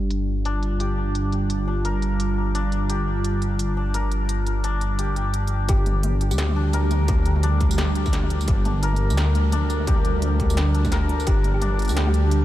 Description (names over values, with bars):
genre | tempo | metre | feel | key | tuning
half-time drum and bass | 172 BPM | 4/4 | swing 59% on 16ths, half-time | G minor | A4 = 439 Hz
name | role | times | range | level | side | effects
dark analog pad | sustained chords | 0.0-12.4 s | G3 to Bb4 | -28 LUFS | right 2 dB | chorus, sidechain pumping
dark detuned saw bass | bass | 0.0-12.4 s | G1 to D2 | -22 LUFS | equal | none
industrial drum kit | drums | 0.1-12.4 s | hi-hat, snare drum, tambourine, toms | -30 LUFS | right 1 dB | overdrive, low-pass filter on hats, small room ambience, low-pass filter on toms, low-pass filter on perc, low-pass filter on snare
santur | arpeggios | 0.5-12.4 s | D4 to Bb4 | -30 LUFS | left 3 dB | diffuse ambient delay
thumb-piano-like synth pluck | melody | 5.7-6.4, 11.3-12.4 s | G4 | -35 LUFS | left 1 dB | chorus, diffuse ambient delay
electronic kick drum | drums | 5.7-11.4 s | none | -22 LUFS | equal | distortion, overdrive, small room ambience
room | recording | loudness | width
light reverb | none | -20 LUFS | side -14 dB against mid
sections
0.0-5.7 A section; 5.7-12.4 B section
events
drop 5.7-12.4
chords
0.0 G5